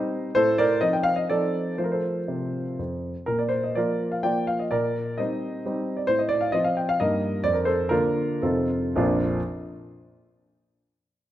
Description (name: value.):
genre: classical, romantic triple-time dance for piano with dotted rhythms.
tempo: 105-141 BPM.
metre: 3/4.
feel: rubato.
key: Bb major.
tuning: A4 = 439 Hz.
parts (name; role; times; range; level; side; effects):
warm concert grand piano; solo; 0.0-9.4 s; Bb1 to G5; -22 LUFS; equal; none.
room: moderate recital hall reverb, RT60 1.7 s.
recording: none.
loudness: -22 LUFS.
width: side -13 dB against mid.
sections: 0.0-9.0 A section; 9.0-10.6 B section.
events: slowing down 5.4-9.0.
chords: 0.3 F7/A; 1.8 F; 3.3 Bb; 4.7 Cm7/Bb; 6.1 F/A; 7.0 Eb/G; 7.4 Bb/F; 8.5 F7; 9.0 Bb.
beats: | 0.33 0.79 1.28 | 1.77 2.27 2.79 | 3.27 3.77 4.26 | 4.72 5.19 5.66 | 6.09 6.54 7.00 | 7.45 7.92 8.45 | 9.00.